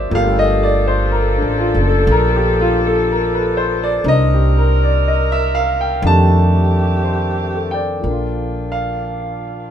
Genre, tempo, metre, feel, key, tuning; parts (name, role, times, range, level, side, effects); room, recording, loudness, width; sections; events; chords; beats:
jazz ballad; 60 BPM; 4/4; swing 67% on 8ths; Bb major; A4 = 440 Hz
warm grand piano; accompaniment; 0.0-9.7 s; Eb3 to A5; -17 LUFS; left 1 dB
upright bass; bass; 0.0-9.7 s; Gb1 to F2; -17 LUFS; equal
mellow saxophone section; sustained chords; 0.1-9.7 s; F3 to Bb4; -23 LUFS; right 1 dB
little or no reverb; minimal, uncompressed stereo recording; -13 LUFS; side -9 dB against mid
0.0-8.0 A section; 8.0-9.7 B section
0.1 Gm9; 4.0 Cm9; 6.0 F13; 8.0 Bbmaj7
| 0.11 1.09 2.08 3.06 | 4.04 5.04 6.03 7.03 | 8.03 9.03